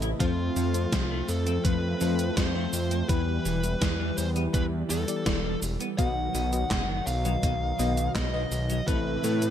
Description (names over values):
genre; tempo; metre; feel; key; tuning
synthwave; 83 BPM; 4/4; straight; E phrygian; A4 = 440 Hz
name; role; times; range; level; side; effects
brassy analog pad; sustained chords; 0.0-9.5 s; C3 to D#5; -34 LUFS; right 2 dB; chorus, vintage 12-bit sampler grit, sidechain pumping
clean electric guitar; riff; 0.0-9.4 s; B2 to E4; -35 LUFS; left 3 dB; lush chorus, digital delay
fat analog bass; bass; 0.0-9.5 s; E1 to A2; -29 LUFS; equal; none
gated 80s digital drum machine; drums; 0.0-9.5 s; cabasa, handclaps, hi-hat, snare drum; -33 LUFS; right 1 dB; gated reverb, gated reverb snare
fuzz lead guitar; melody; 0.2-9.5 s; F4 to F#5; -33 LUFS; equal; distortion, ping-pong delay
FM electric piano with soft pad layer; stabs; 0.2-9.5 s; A2 to D#5; -34 LUFS; left 6 dB; chorus
electronic kick drum; drums; 0.2-9.0 s; none; -28 LUFS; equal; none
room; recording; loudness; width
little or no reverb; none; -25 LUFS; side -10 dB against mid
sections
0.0-9.5 A section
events
none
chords
0.2 F; 3.1 Em; 6.0 B; 8.9 Amadd9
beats
| 0.20 0.93 1.65 2.37 | 3.09 3.82 4.54 5.26 | 5.99 6.71 7.43 8.15 | 8.88